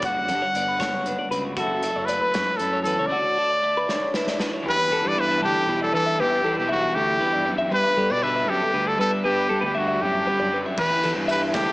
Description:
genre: math rock and midwest emo.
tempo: 78 BPM (dotted quarters).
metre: 6/8.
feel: straight.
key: unclear.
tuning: A4 = 440 Hz.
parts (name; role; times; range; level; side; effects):
bright trumpet; melody; 0.0-11.7 s; F#4 to F#5; -22 LUFS; equal; none.
twelve-string electric guitar; accompaniment; 0.0-11.7 s; D2 to F#4; -32 LUFS; right 2 dB; none.
twelve-string electric guitar; arpeggios; 0.0-11.7 s; F#4 to E5; -27 LUFS; left 1 dB; phaser, slapback echo.
fuzz fingered electric bass; bass; 0.0-11.7 s; F#1 to G3; -31 LUFS; equal; overdrive.
loose indie drum kit; drums; 0.0-4.5, 10.8-11.7 s; crash cymbal, hi-hat, kick drum, ride cymbal, snare drum; -31 LUFS; equal; none.
raw garage guitar; riff; 4.6-11.7 s; E3 to G4; -30 LUFS; equal; overdrive, slapback echo.
room: wet recital hall reverb, RT60 1.4 s, studio ambience.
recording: big arena sound, small speaker sound.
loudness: -20 LUFS.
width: side -21 dB against mid.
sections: 0.0-4.6 A section; 4.6-11.7 B section.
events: drum fill 3.9-4.6.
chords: 0.0 F#m7; 3.1 Dmaj9; 4.6 Em7; 7.7 Gmaj7; 10.8 Em7.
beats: | 0.03 0.80 | 1.57 2.34 | 3.11 3.88 | 4.65 5.42 | 6.18 6.95 | 7.71 8.48 | 9.25 10.01 | 10.78 11.54.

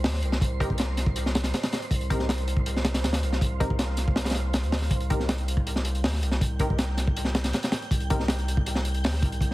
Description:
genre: drum and bass, jungle.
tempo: 160 BPM.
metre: 4/4.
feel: straight.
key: C minor.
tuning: A4 = 440 Hz.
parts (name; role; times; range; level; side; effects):
filtered dub chord stab; stabs; 0.0-9.5 s; C4 to Bb4; -35 LUFS; left 1 dB; chorus, dub echo.
saturated sub bass; bass; 0.0-9.5 s; C2 to D2; -28 LUFS; equal; tube saturation.
crunchy breakbeat drum kit; drums; 0.0-9.5 s; hi-hat, kick drum, snare drum; -26 LUFS; equal; none.
wind-like tuned noise texture; texture; 0.0-9.5 s; C5 to G6; -39 LUFS; right 4 dB; built-in reverb.
room: small room ambience.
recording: heavily compressed radio sound.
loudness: -24 LUFS.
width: side -18 dB against mid.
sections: 0.0-9.5 A section.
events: none.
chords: 0.0 Cm7.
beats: 0.04 | 0.41 0.79 1.17 1.54 | 1.92 2.29 2.67 3.04 | 3.42 3.79 4.17 4.54 | 4.92 5.29 5.67 6.04 | 6.42 6.79 7.17 7.54 | 7.92 8.29 8.66 9.04 | 9.41.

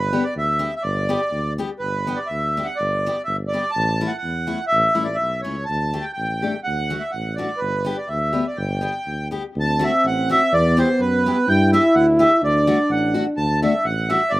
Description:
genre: alpine folk, alpine dance band.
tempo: 125 BPM.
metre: 2/4.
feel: swing 53% on 8ths, rubato.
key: G major.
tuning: A4 = 442 Hz.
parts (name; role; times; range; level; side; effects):
accordion; melody; 0.0-14.4 s; B4 to A5; -20 LUFS; right 1 dB; none.
mellow tuba; bass; 0.0-14.4 s; G1 to G2; -24 LUFS; equal; none.
picked steel-string acoustic guitar; accompaniment; 0.1-14.2 s; A3 to G4; -26 LUFS; left 4 dB; slapback echo.
mellow euphonium; second line; 9.5-14.4 s; B3 to E4; -20 LUFS; equal; slapback echo.
room: light reverb.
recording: recorded outdoors, with no room sound.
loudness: -18 LUFS.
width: side -18 dB against mid.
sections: 0.0-1.8 A section; 1.8-9.5 A section; 9.5-14.4 B section.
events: none.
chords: 0.0 G; 3.7 A; 5.7 Dsus4; 6.7 D; 7.6 G; 9.5 D; 10.5 Em; 11.5 G; 12.4 D.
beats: 0.34 | 0.83 1.32 | 1.81 2.30 | 2.79 3.27 | 3.75 4.23 | 4.71 5.19 | 5.68 6.17 | 6.66 7.13 | 7.61 8.09 | 8.57 9.06 | 9.55 10.04 | 10.52 10.99 | 11.46 11.94 | 12.41 12.88 | 13.36 13.84 | 14.32.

